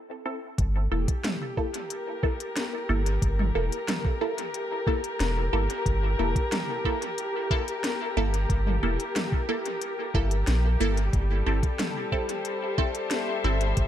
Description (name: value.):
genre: ambient dub.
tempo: 91 BPM.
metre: 4/4.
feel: straight.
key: G dorian.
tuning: A4 = 444 Hz.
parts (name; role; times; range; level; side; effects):
filtered dub chord stab; stabs; 0.3-13.6 s; Bb3 to A4; -32 LUFS; right 1 dB; phaser, dub echo.
soft dub sub bass; bass; 0.6-13.9 s; E1 to Bb1; -25 LUFS; equal; none.
electronic kick drum; drums; 0.6-13.9 s; none; -27 LUFS; equal; none.
organic electronic drum kit; drums; 0.6-13.9 s; hi-hat, snare drum, toms; -33 LUFS; equal; dub echo.
muted chamber string section; sustained chords; 1.0-13.9 s; G3 to E5; -31 LUFS; left 2 dB; none.
room: light reverb, digital ambience.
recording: none.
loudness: -25 LUFS.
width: side -11 dB against mid.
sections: 0.6-13.9 A section.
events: break 0.0-0.6.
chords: 0.0 Am/G; 0.6 Gm69; 11.1 Am/G.